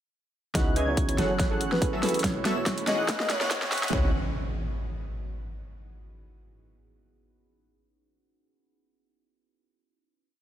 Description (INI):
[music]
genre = future bass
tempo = 142 BPM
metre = 4/4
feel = swing 54% on 16ths, half-time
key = C# minor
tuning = A4 = 440 Hz
[part]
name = soft octave-layered synth lead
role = melody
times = 0.5-4.1 s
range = B4 to D#5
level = -32 LUFS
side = left 1 dB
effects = chorus, sidechain pumping, tape echo
[part]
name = tine electric piano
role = accompaniment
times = 0.5-4.1 s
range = B2 to E5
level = -35 LUFS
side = right 3 dB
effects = sidechain pumping, tape echo
[part]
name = airy dreamy lead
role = arpeggios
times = 0.5-4.1 s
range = E6 to G#6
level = -37 LUFS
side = equal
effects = chorus, sidechain pumping, tape echo
[part]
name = concert harp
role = arpeggios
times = 0.5-4.1 s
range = B3 to G#4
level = -41 LUFS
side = right 1 dB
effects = none
[part]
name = warm 808-style bass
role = bass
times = 0.5-4.1 s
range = F#1 to E2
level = -33 LUFS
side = equal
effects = sidechain pumping
[part]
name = big-room dance drum kit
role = drums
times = 0.5-4.0 s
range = hi-hat, snare drum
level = -29 LUFS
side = equal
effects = overdrive
[part]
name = electronic kick drum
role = drums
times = 0.5-4.0 s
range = none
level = -28 LUFS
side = equal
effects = overdrive
[part]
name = airy breathy pad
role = sustained chords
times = 0.6-4.1 s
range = D#3 to D#5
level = -42 LUFS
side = equal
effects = none
[part]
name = supersaw stab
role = riff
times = 0.6-4.1 s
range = E3 to G#5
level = -33 LUFS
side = right 2 dB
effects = sidechain pumping, low-pass filter, tape echo
[part]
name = riser and impact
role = sound effects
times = 2.4-5.6 s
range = none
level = -35 LUFS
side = equal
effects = none
[sound]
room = light reverb, digital ambience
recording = high-pass filter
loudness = -24 LUFS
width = side -11 dB against mid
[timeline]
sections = 0.6-3.9 build; 3.9-5.6 final chord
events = build-up 0.6-3.9; drum fill 0.6-3.9; filter sweep on supersaw synth 0.6-3.9; filter sweep on soft synth lead 0.6-3.9; filter sweep 0.6-3.9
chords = 0.6 C#m11; 1.2 F#m9; 2.2 B9sus4; 3.1 Emaj7; 3.9 C#m11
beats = | 0.55 0.97 1.40 1.82 | 2.24 2.66 3.08 3.51 | 3.93 4.35 4.78 5.20